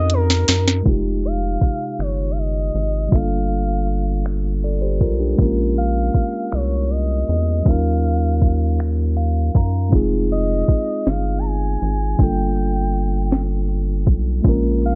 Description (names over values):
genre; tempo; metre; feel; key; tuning
slow six-eight R&B; 53 BPM (dotted quarters); 6/8; straight; unclear; A4 = 440 Hz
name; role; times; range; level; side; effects
gliding portamento lead; melody; 0.0-15.0 s; Bb4 to Bb5; -29 LUFS; equal; chorus
mellow tine electric piano; accompaniment; 0.0-15.0 s; C3 to Bb5; -26 LUFS; equal; none
rubbery square bass; bass; 0.0-15.0 s; F1 to Gb2; -22 LUFS; equal; none
smooth R&B drum kit; drums; 0.1-15.0 s; finger snaps, hi-hat, kick drum, snare drum; -19 LUFS; equal; none
room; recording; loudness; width
little or no reverb; low-pass filter, nothing above 7.8 kHz; -19 LUFS; mono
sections
0.9-15.0 A section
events
drum fill 0.0-0.9; filter sweep 0.9-15.0; tine electric piano fill 8.8-9.9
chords
0.0 Ebm9; 0.9 Fm9; 3.1 Gm9; 5.4 Bbm9; 7.7 Ebm9; 9.9 Fm9; 12.2 Gm9; 14.4 Bbm7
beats
| 0.86 2.00 | 3.13 4.26 | 5.39 6.52 | 7.66 8.79 | 9.92 11.05 | 12.18 13.32 | 14.45